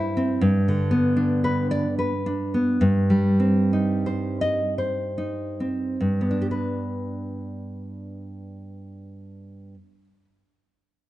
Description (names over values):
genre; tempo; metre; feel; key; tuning
romantic piece for solo classical guitar; 48-84 BPM; 3/4; rubato; G major; A4 = 440 Hz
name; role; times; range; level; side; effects
nylon-string guitar; solo; 0.0-10.2 s; G2 to Eb5; -22 LUFS; equal; none
room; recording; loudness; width
light reverb; dark, warm production, nothing above 10.6 kHz; -21 LUFS; side -15 dB against mid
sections
0.0-6.0 A section; 6.0-11.1 B section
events
slowing down 0.0-6.0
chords
0.4 G; 2.8 Cm/G; 6.0 G